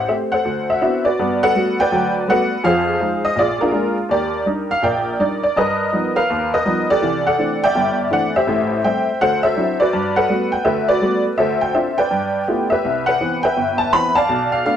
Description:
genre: solo jazz.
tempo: 165 BPM.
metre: 4/4.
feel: swing 63% on 8ths.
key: G major.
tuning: A4 = 439 Hz.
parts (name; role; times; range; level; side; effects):
honky-tonk upright piano; solo; 0.0-14.8 s; G1 to B5; -16 LUFS; equal; none.
room: wet studio reverb, RT60 0.8 s.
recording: heard from further back in the room.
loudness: -15 LUFS.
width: side -9 dB against mid.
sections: 0.0-1.2 A section; 1.2-12.8 A section; 12.8-14.8 B section.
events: none.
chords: 0.5 D13; 1.2 Gmaj9; 2.6 Fm7; 3.4 Bb7; 4.1 Ebmaj7; 5.6 G7alt; 7.0 C69; 8.5 Am7; 9.2 D9; 9.9 Gmaj9; 11.4 Dm7; 12.1 G13; 12.8 Cmaj7.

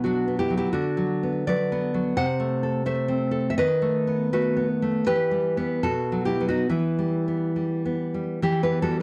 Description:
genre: romantic piece for solo classical guitar.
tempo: 67-92 BPM.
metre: 2/4.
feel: rubato.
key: E minor.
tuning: A4 = 440 Hz.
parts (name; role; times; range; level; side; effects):
nylon-string guitar; solo; 0.0-9.0 s; B2 to F#5; -25 LUFS; equal; slapback echo.
room: studio reverb.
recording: dry, close 1970s-style studio recording.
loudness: -25 LUFS.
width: mono.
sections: 0.0-8.4 A section.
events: none.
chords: 0.0 Bm; 0.7 Bm/D; 2.2 Am/C; 3.6 B7/D#; 5.0 Em; 5.8 B7; 6.7 Em.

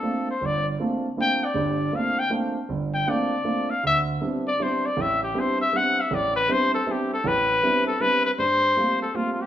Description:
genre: jazz.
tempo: 158 BPM.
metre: 3/4.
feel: swing 64% on 8ths.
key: unclear.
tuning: A4 = 441 Hz.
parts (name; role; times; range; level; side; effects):
warm trumpet; melody; 0.0-9.5 s; F4 to G5; -22 LUFS; left 2 dB; none.
dark grand piano; accompaniment; 0.0-9.4 s; G1 to F4; -26 LUFS; right 2 dB; none.
room: wet large studio reverb, RT60 1.2 s.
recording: none.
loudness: -21 LUFS.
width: side -11 dB against mid.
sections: 0.0-8.4 A section; 8.4-9.5 B section.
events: trumpet solo 0.0-8.4.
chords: 0.0 C13sus4; 3.8 D13sus4; 8.4 Gm11.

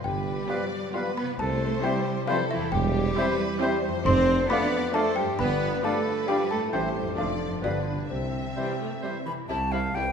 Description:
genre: cinematic, playful, whimsical film cue.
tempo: 134 BPM.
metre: 3/4.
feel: straight.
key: C major.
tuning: A4 = 441 Hz.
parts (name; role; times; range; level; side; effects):
trough xylophone with soft rubber mallets; melody; 0.0-10.1 s; C5 to C6; -33 LUFS; left 3 dB; none.
rich studio violin section; second line; 0.0-10.0 s; C4 to E5; -35 LUFS; left 1 dB; none.
concert harp; arpeggios; 0.0-10.1 s; E2 to D5; -35 LUFS; left 7 dB; none.
mellow tuba; bass; 0.0-10.1 s; E1 to C2; -34 LUFS; right 4 dB; none.
rich studio double bass section; bass; 0.0-10.1 s; E1 to C2; -32 LUFS; right 3 dB; none.
bright clarinet; second line; 0.1-9.2 s; C4 to C5; -32 LUFS; left 1 dB; none.
rich studio cello section; bass; 0.1-10.1 s; C2 to C4; -31 LUFS; right 3 dB; none.
rich studio violin section; melody; 0.5-10.0 s; B3 to G4; -40 LUFS; left 4 dB; none.
clear oboe; second line; 0.5-9.2 s; B4 to D5; -37 LUFS; equal; none.
silver concert flute; second line; 0.5-10.1 s; E5 to B5; -36 LUFS; left 2 dB; none.
mellow bassoon; accompaniment; 0.5-9.2 s; G3 to A3; -36 LUFS; right 1 dB; none.
warm symphonic viola section; accompaniment; 0.5-10.0 s; E3 to F4; -34 LUFS; right 2 dB; none.
dark French horn section; sustained chords; 0.5-10.1 s; E3 to D4; -37 LUFS; left 3 dB; none.
room: wet scoring stage reverb, RT60 1.8 s.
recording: minimal, uncompressed stereo recording.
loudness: -24 LUFS.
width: side -6 dB against mid.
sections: 0.0-9.5 A section.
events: none.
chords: 0.0 G7; 1.4 C; 2.7 C/E; 4.1 F6; 5.4 G7; 6.7 Am; 7.2 Dm/F; 7.6 G7; 8.1 C.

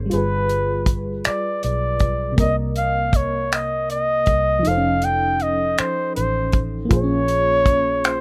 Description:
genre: slow six-eight R&B.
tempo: 53 BPM (dotted quarters).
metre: 6/8.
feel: straight.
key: unclear.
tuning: A4 = 440 Hz.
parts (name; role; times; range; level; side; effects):
FM electric piano with tremolo; accompaniment; 0.0-8.2 s; C3 to D5; -28 LUFS; equal; none.
vintage muted fingered electric bass; bass; 0.0-8.2 s; F1 to C2; -28 LUFS; equal; none.
warm flugelhorn; melody; 0.1-8.2 s; B4 to G5; -23 LUFS; equal; none.
damped 70s drum kit; drums; 0.1-8.2 s; finger snaps, hi-hat, kick drum; -22 LUFS; equal; none.
room: light reverb.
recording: rough home demo mix.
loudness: -20 LUFS.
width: mono.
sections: 0.0-8.2 A section.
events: none.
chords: 0.1 G7b9; 2.4 Cm7; 4.6 F7b13; 6.9 Bbm7.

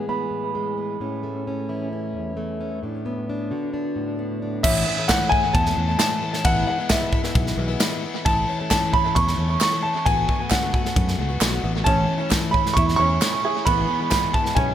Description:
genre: indie folk with a building arrangement.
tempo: 133 BPM.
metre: 4/4.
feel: straight.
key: A major.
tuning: A4 = 436 Hz.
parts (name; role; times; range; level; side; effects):
clear upright piano; melody; 0.0-0.7, 4.6-14.7 s; E5 to C#6; -23 LUFS; right 2 dB; tape echo.
fingerpicked plugged-in steel-string acoustic guitar; accompaniment; 0.0-6.4 s; E2 to G#4; -28 LUFS; equal; tape echo.
picked plugged-in twelve-string acoustic guitar; accompaniment; 4.6-14.7 s; A2 to F#4; -28 LUFS; left 4 dB; tape echo.
fingered electric bass; bass; 4.6-14.7 s; A1 to F#2; -24 LUFS; equal; none.
natural country drum kit; drums; 4.6-14.7 s; crash cymbal, kick drum, ride cymbal, snare drum; -23 LUFS; equal; tape echo.
group handclap; percussion; 5.1-14.2 s; none; -30 LUFS; right 5 dB; none.
tambourine; percussion; 5.1-14.2 s; none; -36 LUFS; left 10 dB; none.
bright upright piano; arpeggios; 11.9-14.7 s; B3 to G#4; -28 LUFS; right 5 dB; tape echo.
room: light reverb.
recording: echo-heavy mix.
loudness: -20 LUFS.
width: side -10 dB against mid.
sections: 0.0-4.6 A section; 4.6-14.7 B section.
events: none.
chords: 0.0 E/A; 1.0 A; 2.8 Bm/A; 4.6 A; 6.5 E/A; 8.3 A; 10.1 Bm/A; 11.9 A; 13.7 E/A.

